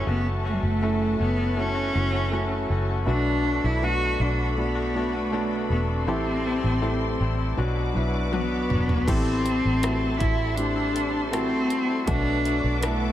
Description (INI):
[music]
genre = pop ballad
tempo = 80 BPM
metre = 4/4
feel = straight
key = unclear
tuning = A4 = 437 Hz
[part]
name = rich cello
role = melody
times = 0.0-13.1 s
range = G3 to F#4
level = -26 LUFS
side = equal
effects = none
[part]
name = warm concert grand piano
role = accompaniment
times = 0.0-13.1 s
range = A2 to A4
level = -29 LUFS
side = equal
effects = dub echo
[part]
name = warm studio string section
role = sustained chords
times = 0.0-13.1 s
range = F#4 to D6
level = -35 LUFS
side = left 2 dB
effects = none
[part]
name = direct-recorded clean electric guitar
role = arpeggios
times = 0.0-13.1 s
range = F#2 to B4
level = -34 LUFS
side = left 7 dB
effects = vibrato effect, dub echo
[part]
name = vintage muted fingered electric bass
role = bass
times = 0.0-13.1 s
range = E1 to B1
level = -27 LUFS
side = equal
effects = none
[part]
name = pop drum kit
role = drums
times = 8.3-13.0 s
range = crash cymbal, hi-hat, kick drum, rim click, toms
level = -29 LUFS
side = equal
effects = none
[sound]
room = light reverb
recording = echo-heavy mix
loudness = -22 LUFS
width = side -12 dB against mid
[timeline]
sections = 0.0-9.1 A section; 9.1-13.1 B section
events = drum fill 8.3-9.1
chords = 0.0 F#m7; 3.1 Bm7; 6.1 Am7; 7.6 Bm; 9.1 Am7; 12.1 Bm7